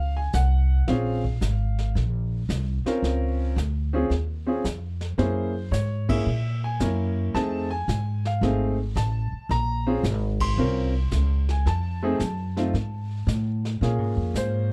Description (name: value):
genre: jazz piano trio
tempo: 111 BPM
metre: 4/4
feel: swing 67% on 8ths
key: Bb minor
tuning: A4 = 439 Hz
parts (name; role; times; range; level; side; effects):
- clear upright piano; melody; 0.0-14.7 s; A3 to C6; -30 LUFS; equal; none
- upright bass; bass; 0.0-14.7 s; Ab1 to Bb2; -27 LUFS; equal; none
- vintage brush drum kit; drums; 0.3-14.7 s; brushed snare drum, hi-hat, kick drum, ride cymbal, snare drum; -36 LUFS; equal; none
room: light reverb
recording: dark, warm production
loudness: -25 LUFS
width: mono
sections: 0.0-13.8 A section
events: band accent 6.0, 10.3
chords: 0.0 Ebm9 (rootless); 0.9 Bbm9; 5.2 Gb7; 7.4 F7#9; 9.5 Bbm9; 11.7 F(#9); 13.8 Bbm9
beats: 0.34 | 0.88 1.42 1.96 2.50 | 3.04 3.58 4.12 4.66 | 5.20 5.74 6.27 6.81 | 7.35 7.89 8.43 8.97 | 9.51 10.04 10.58 11.12 | 11.66 12.20 12.74 13.28 | 13.81 14.35